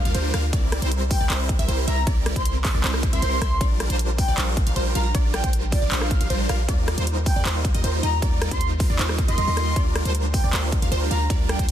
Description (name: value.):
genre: future bass.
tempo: 156 BPM.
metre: 4/4.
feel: half-time.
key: Bb major.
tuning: A4 = 440 Hz.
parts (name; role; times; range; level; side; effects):
wide unison pluck; arpeggios; 0.0-11.7 s; C5 to F5; -33 LUFS; equal; sidechain pumping.
supersaw chords; riff; 0.0-11.7 s; G3 to F5; -28 LUFS; right 1 dB; phaser, sidechain pumping.
warm 808-style bass; bass; 0.0-11.7 s; Bb1 to Eb2; -24 LUFS; equal; sidechain pumping.
big-room dance drum kit; drums; 0.1-11.7 s; handclaps, hi-hat, rim click; -29 LUFS; equal; studio ambience.
electronic kick drum; drums; 0.5-11.7 s; none; -23 LUFS; equal; studio ambience.
breathy flute-like synth lead; melody; 1.1-11.6 s; D5 to C6; -30 LUFS; left 1 dB; lush chorus, sidechain pumping, ping-pong delay.
room: little or no reverb.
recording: dense, heavily limited modern master.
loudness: -20 LUFS.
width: side -10 dB against mid.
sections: 0.0-11.7 A section.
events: none.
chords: 0.0 Bb6/D; 0.5 C9; 3.6 Bb6; 6.7 Ebmaj9; 9.8 Bb6/D.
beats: 0.15 | 0.53 0.92 1.30 1.69 | 2.07 2.45 2.84 3.22 | 3.61 3.99 4.38 4.76 | 5.15 5.53 5.92 6.30 | 6.68 7.07 7.45 7.84 | 8.22 8.61 8.99 9.38 | 9.76 10.15 10.53 10.92 | 11.30 11.69.